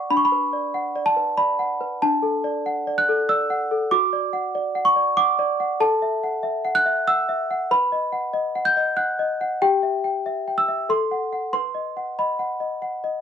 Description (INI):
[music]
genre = classical, lullaby for celesta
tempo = 94 BPM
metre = 3/4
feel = straight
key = unclear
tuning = A4 = 440 Hz
[part]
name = small celesta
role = solo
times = 0.0-13.2 s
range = D4 to G6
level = -20 LUFS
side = equal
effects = none
[sound]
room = moderate studio reverb, RT60 0.5 s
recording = band playing live in one room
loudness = -20 LUFS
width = side -8 dB against mid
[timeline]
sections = 0.0-13.2 A section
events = none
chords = 0.1 Bm/D; 2.0 D; 3.9 D/F#; 5.8 F#m7/A; 7.7 B; 9.6 Em/G; 10.9 F#dim/A; 11.5 B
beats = | 0.10 0.74 1.37 | 2.01 2.64 3.28 | 3.91 4.55 5.18 | 5.81 6.44 7.07 | 7.71 8.34 8.98 | 9.61 10.25 10.89 | 11.53 12.18 12.83